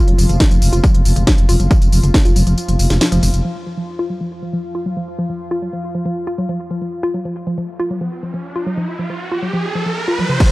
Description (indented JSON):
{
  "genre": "driving peak-time techno",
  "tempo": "138 BPM",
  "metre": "4/4",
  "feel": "straight",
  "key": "unclear",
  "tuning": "A4 = 439 Hz",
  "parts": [
    { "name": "woody wave-folded pluck", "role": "riff", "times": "0.0-10.5 s", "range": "F3 to F4", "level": "-21 LUFS", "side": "equal", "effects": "chorus, tube saturation, sidechain pumping, analog delay" },
    { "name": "deep dark ambient pad", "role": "drone", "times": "0.0-8.7 s", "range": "F3 to F4", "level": "-28 LUFS", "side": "left 2 dB", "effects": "chorus, built-in reverb, sidechain pumping" },
    { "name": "growling FM bass", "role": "bass", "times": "0.1-3.4 s", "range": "F1 to Gb1", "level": "-15 LUFS", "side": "equal", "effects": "sidechain pumping" },
    { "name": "techno drum kit", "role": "drums", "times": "0.1-3.4, 10.2-10.5 s", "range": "crash cymbal, hi-hat, snare drum, tambourine, toms", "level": "-20 LUFS", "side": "equal", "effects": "overdrive, low-pass filter on snare, small room ambience, sidechain pumping on hats, low-pass filter on hats, sidechain pumping on perc, low-pass filter on perc, sidechain pumping on toms, low-pass filter on toms, sidechain pumping on cymbals, low-pass filter on cymbals" },
    { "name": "electronic kick drum", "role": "drums", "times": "0.4-2.2, 10.4-10.5 s", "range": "none", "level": "-12 LUFS", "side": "equal", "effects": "overdrive, small room ambience" },
    { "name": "riser and impact", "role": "sound effects", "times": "8.0-10.5 s", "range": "none", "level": "-23 LUFS", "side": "right 2 dB", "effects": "none" }
  ],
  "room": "digital ambience",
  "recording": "dry, gritty hardware recording, transformer saturation, cassette tape",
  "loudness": "-15 LUFS",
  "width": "side -20 dB against mid",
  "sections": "0.0-3.4 A section; 3.4-10.4 B section",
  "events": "drop 0.0-3.4; break 2.6-3.4; band accent 3.0; filter sweep on synth arpeggio sound 3.4-10.4; riser 8.0-10.4; drum fill 10.2",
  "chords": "none"
}